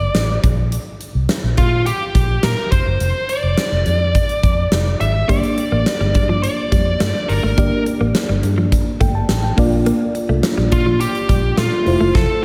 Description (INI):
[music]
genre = 1980s-style pop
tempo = 105 BPM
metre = 4/4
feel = straight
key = unclear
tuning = A4 = 441 Hz
[part]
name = smooth overdriven lead guitar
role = melody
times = 0.0-12.4 s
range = F4 to E5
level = -23 LUFS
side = equal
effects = analog delay
[part]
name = vintage muted fingered electric bass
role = bass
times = 0.0-12.3 s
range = F1 to Bb2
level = -21 LUFS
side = equal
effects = none
[part]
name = huge arena drum kit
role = drums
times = 0.1-12.3 s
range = hi-hat, kick drum, snare drum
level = -22 LUFS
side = equal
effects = none
[part]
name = FM electric piano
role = accompaniment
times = 5.3-12.4 s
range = A3 to A5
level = -24 LUFS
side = equal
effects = none
[part]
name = direct-recorded clean electric guitar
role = riff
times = 5.3-12.2 s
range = F3 to Bb3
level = -27 LUFS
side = equal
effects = analog chorus, analog delay
[sound]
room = wet lush hall reverb, RT60 1.9 s, studio reverb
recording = dreamy mix soaked in reverb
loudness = -17 LUFS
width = mono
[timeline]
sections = 0.0-12.4 A section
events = drum fill 12.1-12.4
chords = 0.4 N.C.; 2.7 F5; 5.3 Gm; 9.6 Bb; 11.9 Fmaj7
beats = 0.15 | 0.72 1.29 1.86 2.44 | 3.01 3.58 4.15 4.72 | 5.29 5.86 6.43 7.01 | 7.58 8.15 8.72 9.29 | 9.86 10.44 11.01 11.58 | 12.15